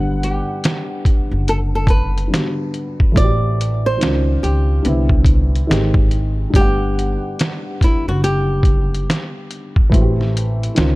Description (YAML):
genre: lo-fi hip hop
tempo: 71 BPM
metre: 4/4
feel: swing 62% on 16ths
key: G major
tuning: A4 = 442 Hz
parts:
  - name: dark upright piano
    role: accompaniment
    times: 0.0-11.0 s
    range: D3 to F#5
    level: -22 LUFS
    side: equal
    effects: cassette tape
  - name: upright bass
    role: bass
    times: 0.0-11.0 s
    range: F#1 to C#2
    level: -18 LUFS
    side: equal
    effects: none
  - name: flamenco guitar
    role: melody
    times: 0.2-11.0 s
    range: E4 to D5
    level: -23 LUFS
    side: equal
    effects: none
  - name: trip hop sampler-style drum kit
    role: drums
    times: 0.2-11.0 s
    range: hi-hat, kick drum, snare drum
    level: -16 LUFS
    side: equal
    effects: none
room: small room ambience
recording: none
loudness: -14 LUFS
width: side -20 dB against mid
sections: 0.0-11.0 A section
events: none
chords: 0.0 Gmaj7; 3.2 Am7; 4.0 C#maj9; 4.8 Cmaj9; 5.7 Abmaj7; 6.5 Gmaj7; 9.9 Am7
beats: 0.62 1.47 2.31 | 3.16 4.00 4.85 5.70 | 6.54 7.38 8.23 9.08 | 9.92 10.77